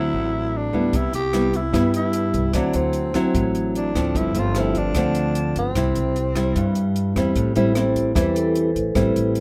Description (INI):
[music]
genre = bossa nova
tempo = 150 BPM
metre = 4/4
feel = straight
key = C major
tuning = A4 = 440 Hz
[part]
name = growling tenor saxophone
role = melody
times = 0.0-6.9 s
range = C4 to G4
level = -28 LUFS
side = equal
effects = none
[part]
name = nylon-string guitar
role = accompaniment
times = 0.0-9.4 s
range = G2 to E4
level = -23 LUFS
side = equal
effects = none
[part]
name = upright bass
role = bass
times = 0.0-9.4 s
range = G1 to G2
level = -29 LUFS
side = equal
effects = none
[part]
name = compact cocktail drum kit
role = drums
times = 0.9-9.4 s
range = hi-hat, kick drum, rim click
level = -30 LUFS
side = equal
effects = none
[part]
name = vibraphone with medium hard mallets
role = accompaniment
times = 7.6-9.4 s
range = A4 to C5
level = -27 LUFS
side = equal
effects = none
[sound]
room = light reverb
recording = rough home demo mix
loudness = -21 LUFS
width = mono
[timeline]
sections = 0.0-7.4 A section; 7.4-9.4 B section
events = vibraphone solo 7.4-9.4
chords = 0.0 D9; 0.9 Cmaj7; 2.5 D9; 4.1 G9sus4; 5.8 C; 7.4 Am7